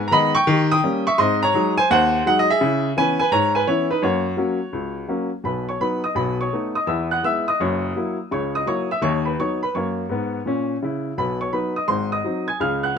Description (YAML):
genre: jazz, stride piano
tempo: 168 BPM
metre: 4/4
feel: swing 65% on 8ths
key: B major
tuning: A4 = 440 Hz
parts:
  - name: clear upright piano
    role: solo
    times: 0.0-13.0 s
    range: F#1 to G#6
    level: -18 LUFS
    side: equal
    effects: none
room: light reverb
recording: close, detailed microphones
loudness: -19 LUFS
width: side -7 dB against mid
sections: 0.0-5.5 A section; 5.5-13.0 B section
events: none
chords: 0.5 D#7; 1.2 G#7; 2.6 C#m7; 4.0 F#; 5.5 B; 6.2 B7; 6.9 E; 7.6 F#7; 8.3 F#7/C#; 9.0 B/D#; 9.7 F#; 11.2 B; 11.9 G#7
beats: 0.13 0.48 0.84 | 1.19 1.55 1.90 2.25 | 2.61 2.96 3.32 3.67 | 4.03 4.38 4.74 5.09 | 5.45 5.81 6.16 6.52 | 6.88 7.24 7.59 7.95 | 8.31 8.67 9.03 9.38 | 9.74 10.10 10.46 10.81 | 11.17 11.53 11.89 12.25 | 12.61